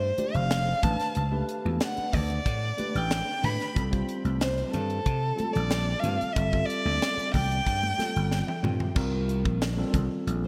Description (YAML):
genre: electric jazz fusion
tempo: 92 BPM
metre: 4/4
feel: straight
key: unclear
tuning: A4 = 440 Hz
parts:
  - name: warm violin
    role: melody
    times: 0.0-10.5 s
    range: A4 to B5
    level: -32 LUFS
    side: equal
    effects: none
  - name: vintage slap bass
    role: bass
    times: 0.0-10.5 s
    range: F1 to C3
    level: -31 LUFS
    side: equal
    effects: none
  - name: tine electric piano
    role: accompaniment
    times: 0.2-10.4 s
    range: G3 to G5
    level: -36 LUFS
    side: equal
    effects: analog chorus
  - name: crisp fusion drum kit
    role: drums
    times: 0.2-10.4 s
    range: crash cymbal, hi-hat, kick drum, snare drum, toms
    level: -34 LUFS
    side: equal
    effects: gated reverb
  - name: congas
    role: percussion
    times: 0.2-10.1 s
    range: none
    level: -39 LUFS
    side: equal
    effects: none
room: moderate lush hall reverb, RT60 3.1 s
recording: bright 1980s-style digital production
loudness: -27 LUFS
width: mono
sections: 0.0-9.0 A section; 9.0-10.5 B section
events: tine electric piano fill 8.0-9.0; drum fill 8.3-9.0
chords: 0.0 G9sus4; 0.8 A9sus4; 3.8 C7sus4; 6.4 G9sus4; 9.0 C7sus4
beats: 0.51 | 1.16 1.81 2.46 3.11 | 3.76 4.41 5.06 5.71 | 6.36 7.01 7.66 8.31 | 8.96 9.61 10.26